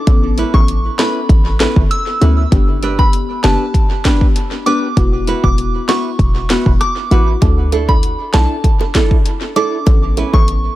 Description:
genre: dancehall.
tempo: 98 BPM.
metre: 4/4.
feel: straight.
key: D major.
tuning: A4 = 437 Hz.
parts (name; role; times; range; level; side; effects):
soft round pluck; accompaniment; 0.1-10.8 s; B3 to A4; -21 LUFS; left 4 dB; chorus, tape echo.
short 808-style bass; bass; 0.1-10.7 s; E1 to D2; -14 LUFS; equal; none.
afro-pop drum kit; drums; 0.1-10.6 s; hi-hat, kick drum, rim click, snare drum; -14 LUFS; equal; none.
nylon-string guitar; arpeggios; 0.4-10.4 s; C#4 to B4; -22 LUFS; right 5 dB; tape echo.
soft synth bell; melody; 0.5-10.5 s; A5 to E6; -21 LUFS; right 1 dB; chorus, tape echo.
bongos; percussion; 7.4-10.5 s; none; -26 LUFS; right 9 dB; none.
room: little or no reverb.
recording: echo-heavy mix.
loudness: -11 LUFS.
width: side -15 dB against mid.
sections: 0.0-10.8 A section.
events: none.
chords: 0.1 Aadd9; 2.5 G; 5.0 Esus2; 7.4 Dsus2; 9.9 Aadd9.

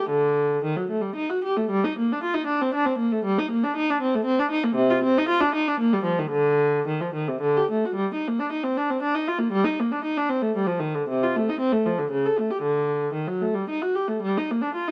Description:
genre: classical, baroque-style suite movement for unaccompanied viola.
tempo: 106-121 BPM.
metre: 3/4.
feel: rubato.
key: G minor.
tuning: A4 = 438 Hz.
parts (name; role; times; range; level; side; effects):
warm viola; solo; 0.0-14.9 s; C3 to A4; -24 LUFS; equal; none.
room: light reverb.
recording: dark, warm production.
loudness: -24 LUFS.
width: mono.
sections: 0.0-8.0 A section; 8.0-14.9 A section.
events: none.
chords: none.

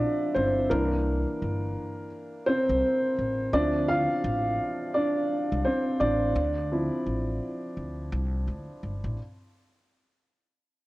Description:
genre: lo-fi hip hop.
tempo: 85 BPM.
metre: 4/4.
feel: swing 61% on 16ths.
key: D minor.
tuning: A4 = 441 Hz.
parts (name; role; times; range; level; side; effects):
dark upright piano; accompaniment; 0.0-9.2 s; E3 to F5; -26 LUFS; equal; cassette tape, low-pass filter.
upright bass; bass; 0.4-9.2 s; G1 to D2; -30 LUFS; equal; none.
room: moderate spring reverb, RT60 2.1 s.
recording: worn, warbling old tape, cassette tape, warbly pitch drift.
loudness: -25 LUFS.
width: side -19 dB against mid.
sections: 0.0-9.2 A section.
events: upright piano solo 0.0-9.2.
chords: 0.0 Dm9; 0.7 C7; 3.5 Dm9; 6.3 Dm7.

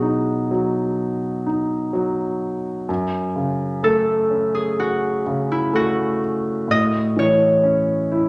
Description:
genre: pop.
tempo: 63 BPM.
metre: 4/4.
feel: straight.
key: unclear.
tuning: A4 = 440 Hz.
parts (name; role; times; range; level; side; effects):
concert harp; melody; 0.0-8.3 s; E4 to D#5; -23 LUFS; equal; none.
clear concert grand piano; accompaniment; 0.0-8.3 s; F#2 to E4; -23 LUFS; equal; none.
room: wet large studio reverb, RT60 1.2 s.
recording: nothing above 10.6 kHz.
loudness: -21 LUFS.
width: mono.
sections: 0.0-8.3 A section.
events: none.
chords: 0.0 B; 2.9 F#m; 6.7 A.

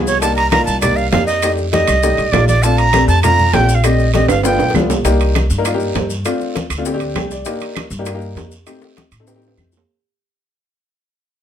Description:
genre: Afro-Cuban jazz.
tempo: 199 BPM.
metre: 4/4.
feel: straight.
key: unclear.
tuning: A4 = 439 Hz.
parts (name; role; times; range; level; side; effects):
warm upright piano; accompaniment; 0.0-9.7 s; A3 to G5; -20 LUFS; left 3 dB; none.
upright bass; bass; 0.0-9.8 s; G1 to A2; -18 LUFS; equal; none.
breathy bright jazz flute; melody; 0.1-4.7 s; Db5 to Bb5; -16 LUFS; right 3 dB; none.
guiro; percussion; 0.1-9.9 s; none; -32 LUFS; right 5 dB; none.
maracas; percussion; 0.1-9.9 s; none; -30 LUFS; left 7 dB; none.
bongos; percussion; 0.2-9.8 s; none; -27 LUFS; left 7 dB; none.
congas; percussion; 0.2-9.7 s; none; -23 LUFS; left 2 dB; none.
timbales; percussion; 0.2-9.8 s; none; -22 LUFS; right 9 dB; none.
claves; percussion; 0.5-9.7 s; none; -29 LUFS; right 7 dB; none.
room: moderate studio reverb, RT60 0.6 s.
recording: none.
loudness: -12 LUFS.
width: side -10 dB against mid.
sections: 0.0-5.0 A section; 5.0-9.9 B section.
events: drum fill 4.3-5.0, 8.7-9.9; fade-out 5.0-9.9; upright piano fill 7.0-7.5.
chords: 0.2 Cm9; 1.4 F13; 2.6 Bbmaj7; 4.4 G7; 5.0 Cm7; 6.3 G9sus4; 7.5 F13sus4; 8.7 F7.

